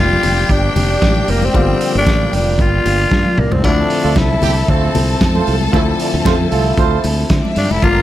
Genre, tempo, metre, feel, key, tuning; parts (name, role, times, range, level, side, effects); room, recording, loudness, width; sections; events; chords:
disco; 115 BPM; 4/4; straight; D minor; A4 = 440 Hz
growling tenor saxophone; melody; 0.0-8.0 s; Bb3 to F4; -18 LUFS; left 2 dB
clear studio string section; second line; 0.0-8.0 s; C4 to Bb5; -24 LUFS; left 1 dB
clear baby grand piano; accompaniment; 0.0-8.0 s; D3 to G4; -22 LUFS; left 5 dB
mellow French horn section; sustained chords; 0.0-8.0 s; F3 to F5; -25 LUFS; right 2 dB
fingered electric bass; bass; 0.0-8.0 s; F1 to D3; -17 LUFS; right 1 dB
vintage drum kit; drums; 0.2-8.0 s; hi-hat, kick drum, snare drum, splash cymbal, toms; -18 LUFS; right 1 dB
congas; percussion; 0.2-8.0 s; -24 LUFS; left 4 dB
warm horn section; stabs; 4.0-7.0 s; A3 to D5; -21 LUFS; right 9 dB
light reverb, small room ambience; -12 LUFS; side -13 dB against mid
0.0-8.0 A section
drum fill 3.1-3.6
0.0 Gm7; 3.6 Dm9